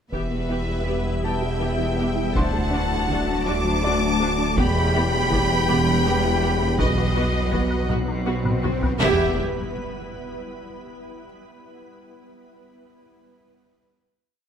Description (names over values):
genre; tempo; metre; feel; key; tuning
cinematic, hybrid orchestral and electronic film score; 54 BPM (dotted quarters); 6/8; straight; E minor; A4 = 440 Hz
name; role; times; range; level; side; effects
clear symphonic violin section; melody; 0.1-9.4 s; D#5 to D6; -28 LUFS; left 2 dB; none
rich symphonic violin section; second line; 0.1-9.4 s; E4 to A5; -29 LUFS; left 1 dB; none
rich symphonic viola section; accompaniment; 0.1-9.4 s; B3 to G4; -29 LUFS; right 2 dB; none
dark French horn section; sustained chords; 0.1-9.3 s; B3 to G4; -30 LUFS; left 4 dB; none
soft additive organ-like pad; sustained chords; 0.7-9.4 s; E3 to E5; -30 LUFS; equal; ensemble chorus, built-in reverb
resonant blip pluck; arpeggios; 0.1-8.9 s; D3 to B4; -34 LUFS; equal; none
rich studio double bass section; bass; 0.1-9.4 s; E1 to D2; -27 LUFS; right 2 dB; none
rich symphonic cello section; bass; 0.1-9.4 s; D2 to B2; -29 LUFS; right 1 dB; none
warm sub bass; bass; 0.1-9.4 s; D1 to B1; -30 LUFS; equal; none
taiko ensemble; drums; 0.1-9.2 s; none; -27 LUFS; equal; none
bright grand piano; texture; 1.2-6.8 s; C5 to D6; -35 LUFS; left 1 dB; ping-pong delay
swell and impact; sound effects; 8.1-11.2 s; none; -34 LUFS; left 1 dB; none
room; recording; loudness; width
moderate scoring stage reverb, RT60 1.8 s; close, detailed microphones; -19 LUFS; side -8 dB against mid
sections
0.1-9.0 theme; 9.0-11.2 final chord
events
swell 8.1-9.0; drum fill 8.5-9.0; impact 9.0-11.2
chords
0.1 Em; 2.4 D; 4.6 Em; 6.8 B; 9.0 Em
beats
| 0.13 1.24 | 2.35 3.46 | 4.57 5.68 | 6.80 7.91 | 9.02 10.13